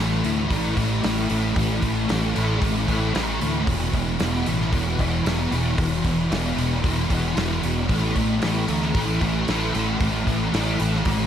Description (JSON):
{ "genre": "rock, shoegaze and dream pop", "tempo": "114 BPM", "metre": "4/4", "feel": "straight", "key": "unclear", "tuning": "A4 = 440 Hz", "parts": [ { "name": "fuzz guitar", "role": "riff", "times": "0.0-11.3 s", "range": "E2 to A3", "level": "-22 LUFS", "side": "equal", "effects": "distortion, ensemble chorus" }, { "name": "fingered electric bass", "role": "bass", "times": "0.0-11.3 s", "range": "E1 to D2", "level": "-26 LUFS", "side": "equal", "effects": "none" }, { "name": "loose indie drum kit", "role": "drums", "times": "0.2-11.2 s", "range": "hi-hat, kick drum, snare drum", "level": "-28 LUFS", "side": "equal", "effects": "none" } ], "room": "wet huge ambient reverb, RT60 7.8 s", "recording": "dreamy mix soaked in reverb", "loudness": "-20 LUFS", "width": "side -9 dB against mid", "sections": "0.0-11.3 A section", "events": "none", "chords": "0.0 Asus4; 3.7 E5; 7.9 A5" }